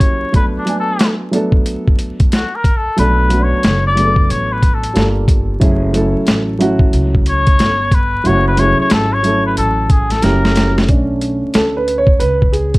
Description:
hip hop, jazz-hop; 91 BPM; 4/4; swing 63% on 16ths; A4 = 439 Hz
trumpet with cup mute; melody; 0.0-10.9 s; D4 to D5; -17 LUFS; left 2 dB; plate reverb
dark concert grand piano; accompaniment; 0.0-12.8 s; F#3 to G#5; -17 LUFS; right 1 dB
boom bap sampler-style drum kit; drums; 0.0-12.8 s; hi-hat, kick drum, snare drum; -14 LUFS; equal
upright bass; bass; 3.0-12.8 s; F#1 to D2; -18 LUFS; equal
moderate studio reverb, RT60 0.6 s; dark, warm production, vinyl crackle; -11 LUFS; side -21 dB against mid
0.0-10.9 A section; 10.9-12.8 A section
break 0.0-0.3; muted trumpet solo 0.0-10.9; drum fill 10.2-10.9; grand piano solo 10.9-12.8
0.3 Bm7; 5.0 Gm9; 5.6 F#m9; 10.2 F#7b9; 10.9 Bm7

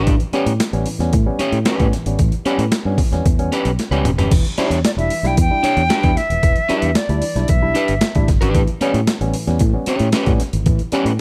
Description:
funk; 113 BPM; 4/4; straight; E dorian; A4 = 440 Hz
electric guitar at the edge of break-up; accompaniment; 0.0-11.1 s; C#4 to C#5; -23 LUFS; equal
barky tine electric piano; stabs; 0.0-11.1 s; A2 to E4; -26 LUFS; equal
fingered electric bass; bass; 0.0-11.2 s; D#1 to A2; -22 LUFS; equal
breakbeat sampler-style drum kit; drums; 0.1-11.2 s; crash cymbal, hi-hat, kick drum, snare drum, toms; -21 LUFS; equal; overdrive
silver concert flute; melody; 4.9-8.3 s; D5 to G5; -22 LUFS; equal
little or no reverb; -17 LUFS; mono
0.0-4.3 A section; 4.3-11.2 B section
drum fill 3.8-4.3
0.1 A9; 4.3 Em7; 8.6 A9

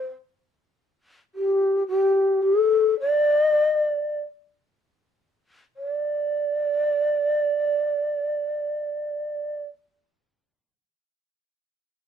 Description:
japanese traditional, Japanese chamber music; 36-59 BPM; 2/4; rubato; A4 = 440 Hz
breathy mellow long shakuhachi; solo; 0.0-9.7 s; G4 to D5; -21 LUFS; equal
light reverb; minimal, uncompressed stereo recording, lossy compression artefacts; -21 LUFS; side -8 dB against mid
0.0-5.8 A section; 5.8-12.1 B section
slowing down 0.8-5.8

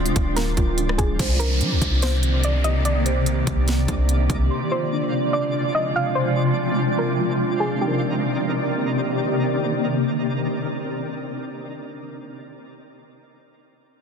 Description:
hip hop, atmospheric cloud-rap; 145 BPM; 4/4; half-time; C minor; A4 = 440 Hz
soft round pluck; melody; 0.0-9.0 s; G4 to F5; -27 LUFS; right 1 dB; chorus, low-pass filter, digital delay
granular cloud pad; sustained chords; 0.0-11.9 s; C3 to D5; -24 LUFS; left 1 dB; built-in reverb, sidechain pumping, low-pass filter
muted felt-like synth keys; arpeggios; 0.0-12.4 s; C4 to C6; -31 LUFS; right 2 dB; chorus, low-pass filter, digital delay
clean 808-style bass; bass; 0.0-4.5 s; C1 to G3; -21 LUFS; equal
twinkling granular texture; texture; 0.0-11.9 s; Bb3 to D5; -31 LUFS; left 1 dB; built-in reverb
trap drum kit; drums; 0.1-4.4 s; crash cymbal, hi-hat, kick drum, rim click, snare drum; -25 LUFS; equal
downlifter; sound effects; 1.2-4.5 s; -30 LUFS; right 2 dB
light reverb; dense, heavily limited modern master; -19 LUFS; side -6 dB against mid
0.0-1.2 A section; 1.2-7.8 B section; 7.8-11.1 C section
0.0 Dm7b5; 1.2 Cm9; 4.5 Dm7b5; 7.8 Cm9

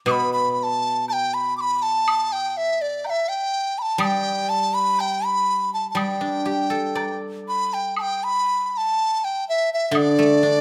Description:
chinese traditional, Chinese chamber ensemble; 61 BPM; 2/4; rubato; G gong mode; A4 = 440 Hz
mellow hollow dizi; melody; 0.1-10.6 s; D5 to D6; -23 LUFS; equal
guzheng; accompaniment; 0.1-10.6 s; B2 to D5; -26 LUFS; equal
woodblock; percussion; 0.1-10.2 s; -31 LUFS; equal
light reverb; -22 LUFS; mono
0.0-8.0 A section; 8.0-10.6 B section

